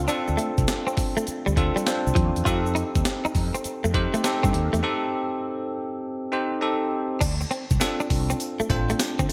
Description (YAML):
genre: R&B, new jack swing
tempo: 101 BPM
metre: 4/4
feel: swing 67% on 16ths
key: unclear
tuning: A4 = 441 Hz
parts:
  - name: bell-like tine electric piano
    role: accompaniment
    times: 0.0-9.3 s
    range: C4 to C5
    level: -29 LUFS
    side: equal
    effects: subtle chorus
  - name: direct-recorded clean electric guitar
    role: riff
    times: 0.0-9.3 s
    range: F3 to F4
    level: -32 LUFS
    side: equal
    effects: ensemble chorus
  - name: mellow fretless electric bass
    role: bass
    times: 0.0-9.3 s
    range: A1 to D3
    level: -28 LUFS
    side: equal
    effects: ensemble chorus
  - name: breakbeat sampler-style drum kit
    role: drums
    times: 0.1-9.3 s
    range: crash cymbal, hi-hat, kick drum, snare drum, tambourine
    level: -28 LUFS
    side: equal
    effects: gated reverb
  - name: tube shaker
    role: percussion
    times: 0.1-9.3 s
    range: none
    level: -42 LUFS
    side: equal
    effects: none
room: moderate plate reverb, RT60 2.3 s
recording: bright 1980s-style digital production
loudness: -25 LUFS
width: mono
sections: 0.0-7.2 A section; 7.2-9.3 B section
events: break 4.8-7.2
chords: 0.0 Dm7; 2.5 F7; 7.2 Dm7